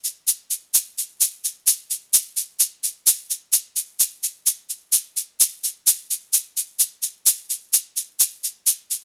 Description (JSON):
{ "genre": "bossa nova", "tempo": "129 BPM", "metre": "4/4", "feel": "straight", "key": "none", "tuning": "none", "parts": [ { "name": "tube shaker", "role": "percussion", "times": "0.0-9.0 s", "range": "none", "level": "-18 LUFS", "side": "equal", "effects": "none" } ], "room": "light reverb", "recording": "home recording on cassette", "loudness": "-21 LUFS", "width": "mono", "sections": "0.0-3.1 A section; 3.1-9.0 A section", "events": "none", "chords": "none" }